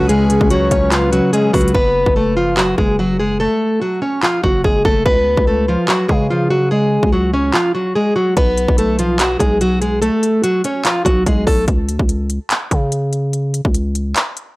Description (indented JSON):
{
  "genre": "hip hop, trap",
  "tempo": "145 BPM",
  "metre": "4/4",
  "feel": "half-time",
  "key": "F# harmonic minor",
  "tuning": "A4 = 439 Hz",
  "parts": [
    { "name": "picked plugged-in old ladder-braced acoustic guitar", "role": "melody", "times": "0.0-11.6 s", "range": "E#3 to C#5", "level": "-15 LUFS", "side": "equal", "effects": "low-pass filter" },
    { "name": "breathy flute-like synth lead", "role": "second line", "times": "0.0-1.7 s", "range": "G#4 to C#5", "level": "-21 LUFS", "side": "left 2 dB", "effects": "chorus, analog delay" },
    { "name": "mellow electric guitar", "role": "accompaniment", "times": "0.0-1.7 s", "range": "C#3 to C#4", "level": "-20 LUFS", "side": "equal", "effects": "spring reverb, low-pass filter" },
    { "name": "airy breathy pad", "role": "sustained chords", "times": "0.0-1.7 s", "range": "B4 to C#6", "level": "-30 LUFS", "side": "left 1 dB", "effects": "none" },
    { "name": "growling 808-style bass", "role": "bass", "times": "0.0-14.1 s", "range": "F#1 to C#3", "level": "-19 LUFS", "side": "equal", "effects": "transformer saturation" },
    { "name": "trap drum kit", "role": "drums", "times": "0.1-14.5 s", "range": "handclaps, hi-hat, kick drum", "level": "-17 LUFS", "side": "equal", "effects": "none" }
  ],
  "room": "digital ambience",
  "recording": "dry, gritty hardware recording, transformer saturation",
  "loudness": "-13 LUFS",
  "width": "side -20 dB against mid",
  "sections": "0.0-1.7 A section; 1.7-14.6 B section",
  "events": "hi-hats muted 1.7-8.4; kick muted 7.5-8.4, 14.2-14.6; break 11.7-14.6",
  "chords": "0.0 C#7sus4; 1.7 F#madd9; 5.1 C#7sus4; 8.4 B5; 11.7 N.C."
}